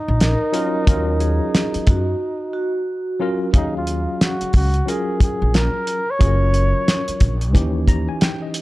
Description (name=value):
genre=hip hop, jazz-hop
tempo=90 BPM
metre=4/4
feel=swing 62% on 16ths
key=Eb minor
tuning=A4 = 439 Hz
part: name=breathy flugelhorn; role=melody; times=0.0-7.4 s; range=Eb4 to Db5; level=-24 LUFS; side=equal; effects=none
part: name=upright bass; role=bass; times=0.1-8.1 s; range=Gb1 to Gb2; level=-19 LUFS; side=equal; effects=none
part: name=vibraphone with soft mallets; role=second line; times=0.2-3.5 s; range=Gb4 to Bb4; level=-25 LUFS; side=right 2 dB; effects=none
part: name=cloth-damped thuddy drum kit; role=drums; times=0.2-8.6 s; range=hi-hat, kick drum, snare drum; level=-17 LUFS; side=equal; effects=none
part: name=tine electric piano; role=accompaniment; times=0.5-8.6 s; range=Fb3 to Bb5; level=-25 LUFS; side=left 1 dB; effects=overdrive, fast stereo tremolo
room=little or no reverb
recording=dark, warm production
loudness=-16 LUFS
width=side -18 dB against mid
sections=0.0-3.5 A section; 3.5-8.6 B section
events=break 2.2-3.5; tine electric piano fill 7.5-8.6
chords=0.0 Ebm9; 3.5 Ebm11; 6.2 Gbmaj7; 7.5 Eb7b9